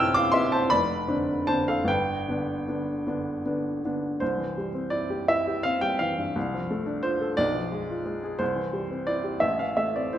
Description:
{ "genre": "classical, romantic character piece for solo piano", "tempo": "49-60 BPM (dotted quarters)", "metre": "6/8", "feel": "rubato", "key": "C major", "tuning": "A4 = 438 Hz", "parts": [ { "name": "warm upright piano", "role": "solo", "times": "0.0-10.2 s", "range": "F1 to F6", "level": "-24 LUFS", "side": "equal", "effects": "none" } ], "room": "wet recital hall reverb, RT60 1.6 s", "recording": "none", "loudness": "-24 LUFS", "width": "side -11 dB against mid", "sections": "0.0-4.2 A section; 4.2-10.2 B section", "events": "none", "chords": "0.0 Am; 0.7 Dm7/F; 1.9 G; 4.2 C; 6.4 Dm7/C; 7.4 Bdim7; 8.4 C; 9.4 Am" }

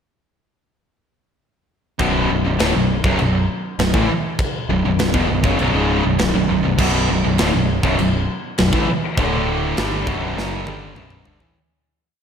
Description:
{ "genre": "heavy metal", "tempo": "100 BPM", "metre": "4/4", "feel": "straight", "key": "B minor", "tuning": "A4 = 441 Hz", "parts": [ { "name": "fuzz guitar", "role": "riff", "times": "2.0-11.5 s", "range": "B1 to G3", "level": "-25 LUFS", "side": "equal", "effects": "distortion" }, { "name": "high-gain distorted guitar", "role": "riff", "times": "2.0-11.5 s", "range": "B1 to G3", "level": "-22 LUFS", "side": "left 7 dB", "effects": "distortion, slapback echo" }, { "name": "scooped high-gain guitar", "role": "riff", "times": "2.0-11.5 s", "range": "B1 to G3", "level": "-22 LUFS", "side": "right 7 dB", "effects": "distortion, slapback echo" }, { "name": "growling picked electric bass", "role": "bass", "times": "2.0-11.5 s", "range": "B0 to A1", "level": "-23 LUFS", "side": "equal", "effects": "overdrive" }, { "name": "tight metal drum kit", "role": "drums", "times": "2.0-11.5 s", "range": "china cymbal, crash cymbal, kick drum, snare drum, toms", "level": "-23 LUFS", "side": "equal", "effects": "none" } ], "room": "wet scoring stage reverb, RT60 1.5 s, studio reverb", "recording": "big arena sound", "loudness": "-16 LUFS", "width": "side -7 dB against mid", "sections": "2.0-11.6 riff", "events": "fade-out 9.2-11.6; drum fill 10.4-11.6", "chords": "2.0 Bm; 9.2 D5; 9.8 Bm" }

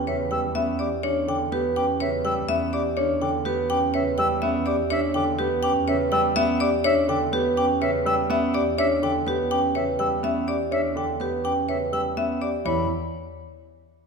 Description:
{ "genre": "classical, minimalist pattern music", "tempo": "124 BPM", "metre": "4/4", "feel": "straight", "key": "E dorian", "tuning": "A4 = 440 Hz", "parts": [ { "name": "marimba with hard mallets", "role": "melody", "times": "0.0-12.9 s", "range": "G4 to G5", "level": "-25 LUFS", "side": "left 4 dB", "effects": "none" }, { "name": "vibraphone with medium hard mallets", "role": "arpeggios", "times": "0.0-12.9 s", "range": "C#4 to B4", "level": "-27 LUFS", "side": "right 4 dB", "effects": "none" }, { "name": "dark double bass", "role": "bass", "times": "0.0-12.9 s", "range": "E2", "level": "-33 LUFS", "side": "right 7 dB", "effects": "none" }, { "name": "warm baby grand piano", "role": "accompaniment", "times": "0.1-12.9 s", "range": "C#3 to C#4", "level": "-29 LUFS", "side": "equal", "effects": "none" }, { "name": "concert flute", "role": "arpeggios", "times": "0.1-12.9 s", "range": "E5 to E6", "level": "-31 LUFS", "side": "left 1 dB", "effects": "none" } ], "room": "moderate scoring stage reverb, RT60 1.9 s", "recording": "minimal, uncompressed stereo recording", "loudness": "-21 LUFS", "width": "side -5 dB against mid", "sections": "0.0-12.7 A section; 12.7-14.1 B section", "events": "none", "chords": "0.0 Em7; 12.7 E5" }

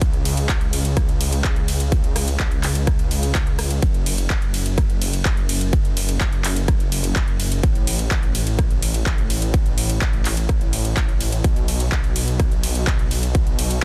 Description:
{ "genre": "EDM, festival progressive house", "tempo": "126 BPM", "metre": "4/4", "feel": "straight", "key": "F# minor", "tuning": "A4 = 440 Hz", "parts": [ { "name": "detuned saw bass", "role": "bass", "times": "0.0-13.8 s", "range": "F#1 to C#2", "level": "-25 LUFS", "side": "equal", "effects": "sidechain pumping" }, { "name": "big-room dance drum kit", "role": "drums", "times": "0.0-13.8 s", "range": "handclaps, hi-hat, ride cymbal, rim click", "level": "-28 LUFS", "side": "equal", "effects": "overdrive" }, { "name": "electronic kick drum", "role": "drums", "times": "0.0-13.4 s", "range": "none", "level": "-22 LUFS", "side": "equal", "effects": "overdrive" } ], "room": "little or no reverb", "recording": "dense, heavily limited modern master", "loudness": "-20 LUFS", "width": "mono", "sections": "0.0-13.8 A section", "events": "none", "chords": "none" }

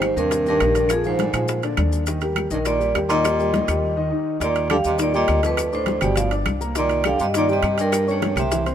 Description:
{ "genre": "Afro-Cuban jazz", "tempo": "205 BPM", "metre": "4/4", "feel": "straight", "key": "Eb major", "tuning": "A4 = 440 Hz", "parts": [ { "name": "vibraphone with medium hard mallets", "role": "melody", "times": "0.0-8.7 s", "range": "Ab4 to F5", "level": "-23 LUFS", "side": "equal", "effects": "none" }, { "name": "mellow baritone saxophone", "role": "second line", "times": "0.0-8.6 s", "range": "F2 to D3", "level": "-26 LUFS", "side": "right 2 dB", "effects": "none" }, { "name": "warm upright piano", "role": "accompaniment", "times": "0.0-8.7 s", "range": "C3 to D6", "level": "-25 LUFS", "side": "left 1 dB", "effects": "none" }, { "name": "upright bass", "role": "bass", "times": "0.0-8.7 s", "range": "G1 to Bb2", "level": "-26 LUFS", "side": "equal", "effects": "none" }, { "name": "bongos", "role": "percussion", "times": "0.0-8.7 s", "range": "none", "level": "-33 LUFS", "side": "left 8 dB", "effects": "none" }, { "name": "claves", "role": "percussion", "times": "0.0-8.5 s", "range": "none", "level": "-33 LUFS", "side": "left 5 dB", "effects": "none" }, { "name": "congas", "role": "percussion", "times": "0.0-8.7 s", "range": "none", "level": "-31 LUFS", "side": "left 2 dB", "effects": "none" }, { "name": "maracas", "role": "percussion", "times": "0.0-8.7 s", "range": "none", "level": "-35 LUFS", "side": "left 4 dB", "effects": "none" }, { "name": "timbales", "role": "percussion", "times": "0.0-8.7 s", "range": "none", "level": "-30 LUFS", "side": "right 8 dB", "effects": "none" } ], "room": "light reverb", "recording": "minimal, uncompressed stereo recording", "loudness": "-18 LUFS", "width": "side -9 dB against mid", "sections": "0.0-4.4 A section; 4.4-8.7 B section", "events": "break 3.8-4.4", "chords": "0.0 Abmaj9; 0.9 Bb7; 2.1 Eb; 4.4 Ebmaj7; 5.6 D5; 6.2 G5; 6.8 Cm9; 7.9 C7(no3)" }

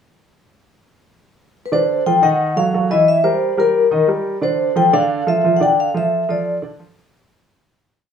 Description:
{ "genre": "jazz", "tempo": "178 BPM", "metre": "4/4", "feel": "straight", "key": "D minor", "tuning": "A4 = 440 Hz", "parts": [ { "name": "vibraphone with soft mallets", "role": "melody", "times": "1.7-6.8 s", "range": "Bb4 to G5", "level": "-15 LUFS", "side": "left 2 dB", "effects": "none" }, { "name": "warm baby grand piano", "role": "accompaniment", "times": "1.7-7.1 s", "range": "D3 to E5", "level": "-19 LUFS", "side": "right 2 dB", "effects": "none" } ], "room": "light reverb", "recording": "small room ambience", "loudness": "-14 LUFS", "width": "side -7 dB against mid", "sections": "0.4-1.7 pickup bar; 1.7-7.1 A section", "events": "fade-out 5.8-7.1", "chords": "0.4 N.C.; 1.7 Dm7; 2.4 D#dim; 3.1 Edim; 3.7 Eb; 4.4 Dmadd9" }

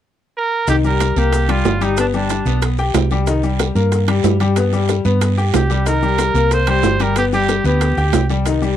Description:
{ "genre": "latin, salsa", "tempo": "185 BPM", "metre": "4/4", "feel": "straight", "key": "C minor", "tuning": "A4 = 439 Hz", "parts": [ { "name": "clear trumpet", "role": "melody", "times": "0.4-2.6, 5.6-8.3 s", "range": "D4 to C5", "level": "-20 LUFS", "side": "right 4 dB", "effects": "none" }, { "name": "bright upright piano", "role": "accompaniment", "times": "0.7-8.8 s", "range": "Eb3 to G5", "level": "-19 LUFS", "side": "left 7 dB", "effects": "none" }, { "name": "hollow-body short-scale fingered electric bass", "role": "bass", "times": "0.7-8.8 s", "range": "G1 to G2", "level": "-17 LUFS", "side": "right 1 dB", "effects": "none" }, { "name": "bongos", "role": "percussion", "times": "0.7-8.6 s", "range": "none", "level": "-25 LUFS", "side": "left 4 dB", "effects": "none" }, { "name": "guiro", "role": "percussion", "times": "0.7-8.8 s", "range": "none", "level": "-32 LUFS", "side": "right 20 dB", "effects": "none" }, { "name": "maracas", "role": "percussion", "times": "0.7-8.8 s", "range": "none", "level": "-34 LUFS", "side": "left 15 dB", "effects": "none" }, { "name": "timbales", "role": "percussion", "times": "0.7-8.6 s", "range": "none", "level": "-22 LUFS", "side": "right 13 dB", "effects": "none" } ], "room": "light reverb", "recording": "dry, close 1970s-style studio recording", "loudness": "-14 LUFS", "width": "side -10 dB against mid", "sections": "0.7-8.8 A section", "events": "none", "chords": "0.0 N.C.; 0.7 Cm7; 2.0 G; 3.3 Cm7; 4.6 G; 5.9 Cm7; 7.2 G" }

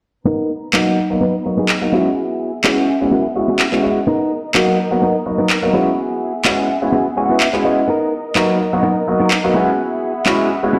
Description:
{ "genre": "filtered disco house", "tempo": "126 BPM", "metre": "4/4", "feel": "swing 54% on 16ths", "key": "B major", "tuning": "A4 = 440 Hz", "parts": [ { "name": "clear symphonic string section", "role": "sustained chords", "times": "0.3-10.8 s", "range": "B3 to B5", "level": "-27 LUFS", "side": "equal", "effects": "vintage 12-bit sampler grit, low-pass filter" }, { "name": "direct-recorded clean electric guitar", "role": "riff", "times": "0.3-10.8 s", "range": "B3 to G#5", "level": "-21 LUFS", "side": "equal", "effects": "low-pass filter" }, { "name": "bright concert grand piano", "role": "accompaniment", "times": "0.7-10.8 s", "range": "F#3 to F#4", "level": "-20 LUFS", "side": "equal", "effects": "phaser, low-pass filter" }, { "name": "electronic handclaps", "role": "drums", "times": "0.7-10.4 s", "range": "none", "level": "-21 LUFS", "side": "equal", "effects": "none" } ], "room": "moderate plate reverb, RT60 1.6 s", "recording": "played on a big sound system in a bare room, stone room reverb", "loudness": "-17 LUFS", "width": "mono", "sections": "0.3-10.8 A section", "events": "filter sweep 0.3-10.8; clean electric guitar fill 6.9-7.9", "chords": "0.3 Bmaj7; 1.9 F#9sus4; 4.1 Bmaj7; 5.7 F#9sus4; 7.9 Bmaj7; 9.6 F#9sus4" }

